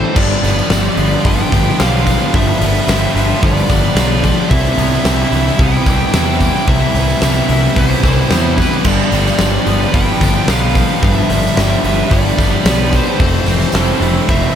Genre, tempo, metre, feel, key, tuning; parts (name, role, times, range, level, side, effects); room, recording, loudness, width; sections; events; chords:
rock, shoegaze and dream pop; 110 BPM; 4/4; straight; G mixolydian; A4 = 439 Hz
smooth overdriven lead guitar; melody; 0.0-14.6 s; B4 to G5; -21 LUFS; left 1 dB; analog delay
twangy electric guitar; arpeggios; 0.0-14.6 s; E3 to E4; -25 LUFS; left 8 dB; lush chorus, analog delay
crunchy overdriven guitar; riff; 0.0-14.6 s; G2 to A4; -21 LUFS; right 9 dB; reverse reverb
thick fuzz guitar; riff; 0.0-14.6 s; F2 to C4; -21 LUFS; left 8 dB; distortion, wide subtle chorus
fuzz picked electric bass; bass; 0.0-14.5 s; F1 to E2; -16 LUFS; equal; overdrive
tight distorted guitar; riff; 0.1-14.5 s; F2 to E4; -22 LUFS; right 1 dB; distortion
huge arena drum kit; drums; 0.2-14.4 s; crash cymbal, hi-hat, kick drum, snare drum; -16 LUFS; equal
tambourine; percussion; 0.3-14.5 s; -32 LUFS; right 10 dB
moderate plate reverb, RT60 2.8 s; dreamy mix soaked in reverb; -11 LUFS; side -9 dB against mid
0.2-14.6 A section
0.2 G7; 4.5 Cmaj7; 8.9 G7; 13.2 Fmaj7